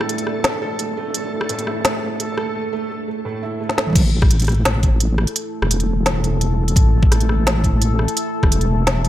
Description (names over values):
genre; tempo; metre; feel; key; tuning
half-time drum and bass; 171 BPM; 4/4; half-time; unclear; A4 = 440 Hz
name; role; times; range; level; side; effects
deep dark ambient pad; sustained chords; 0.0-9.1 s; A3 to A4; -27 LUFS; left 1 dB; chorus, built-in reverb, sidechain pumping
felt-muted upright piano; arpeggios; 0.0-4.0 s; A2 to A4; -26 LUFS; right 4 dB; digital delay
deep soft wobble bass; bass; 0.0-9.1 s; E1 to A1; -19 LUFS; equal; chorus, tube saturation, high-pass filter
organic electronic drum kit; drums; 0.0-9.1 s; crash cymbal, hi-hat, rim click, snare drum, toms; -21 LUFS; equal; none
backwards swelling texture; texture; 0.0-2.6 s; A4; -32 LUFS; right 1 dB; built-in reverb
electronic kick drum; drums; 4.0-8.5 s; none; -15 LUFS; equal; overdrive
room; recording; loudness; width
light reverb; none; -16 LUFS; side -13 dB against mid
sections
0.0-4.0 A section; 4.0-9.1 B section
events
build-up 0.0-4.0; drum fill 3.7; drop 4.0-9.1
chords
0.0 A5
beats
0.09 0.45 0.80 | 1.15 1.50 1.85 2.20 | 2.55 2.90 3.25 3.60 | 3.95 4.30 4.66 5.01 | 5.36 5.71 6.06 6.41 | 6.76 7.11 7.46 7.81 | 8.16 8.52 8.87